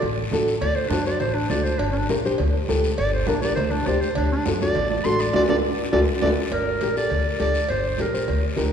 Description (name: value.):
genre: latin, cumbia.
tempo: 204 BPM.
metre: 4/4.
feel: straight.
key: G harmonic minor.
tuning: A4 = 440 Hz.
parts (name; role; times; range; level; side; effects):
clear clarinet; melody; 0.0-8.4 s; D4 to C6; -25 LUFS; right 1 dB; none.
nylon-string guitar; accompaniment; 0.0-8.7 s; D4 to C5; -25 LUFS; left 1 dB; none.
upright bass; bass; 0.0-8.7 s; G1 to F#2; -26 LUFS; left 1 dB; none.
congas; percussion; 0.0-8.7 s; none; -30 LUFS; right 4 dB; none.
cowbell and timbales; percussion; 0.0-8.7 s; none; -32 LUFS; right 2 dB; none.
guiro; percussion; 0.0-8.7 s; none; -37 LUFS; left 4 dB; none.
room: wet church reverb, RT60 3.0 s.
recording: recorded in a church or concert hall.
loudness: -20 LUFS.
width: side -8 dB against mid.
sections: 0.0-6.5 A section; 6.5-8.7 B section.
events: clarinet solo 0.0-6.5; band accent 5.3-6.5; drum fill 5.9-6.5.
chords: 0.0 D; 1.8 Gm; 4.2 D; 6.5 Gm.